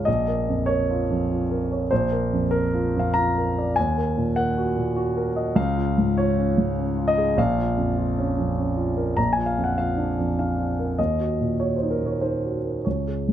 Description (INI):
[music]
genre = classical, contemporary piece for solo grand piano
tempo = 99 BPM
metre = 3/4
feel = rubato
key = Bb minor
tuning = A4 = 440 Hz
[part]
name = dark grand piano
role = solo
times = 0.0-13.3 s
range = Bb1 to Bb5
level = -21 LUFS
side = equal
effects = none
[sound]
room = little or no reverb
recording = close, detailed microphones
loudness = -21 LUFS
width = side -11 dB against mid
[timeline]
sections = 0.1-13.3 A section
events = none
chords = 0.1 Bbm; 1.9 Bb5; 3.8 Ebm; 5.6 Db; 7.4 Bbm; 9.2 Bb; 11.0 Ebm